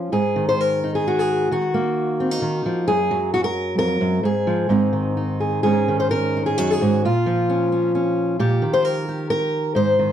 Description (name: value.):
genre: folk, solo fingerstyle acoustic guitar.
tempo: 132 BPM.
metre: 3/4.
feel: rubato.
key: unclear.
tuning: A4 = 437 Hz.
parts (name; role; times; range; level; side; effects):
fingerpicked steel-string acoustic guitar; solo; 0.0-10.1 s; F2 to C5; -18 LUFS; equal; slapback echo.
room: light reverb.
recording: dry, close 1970s-style studio recording.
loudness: -18 LUFS.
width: side -10 dB against mid.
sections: 0.1-10.1 A section.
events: none.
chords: 0.1 Ab5; 1.5 Ebm; 2.9 Gb; 4.2 Fm/Ab; 4.7 Ab; 5.6 Absus4; 7.0 Bbm; 8.4 Eb/Bb.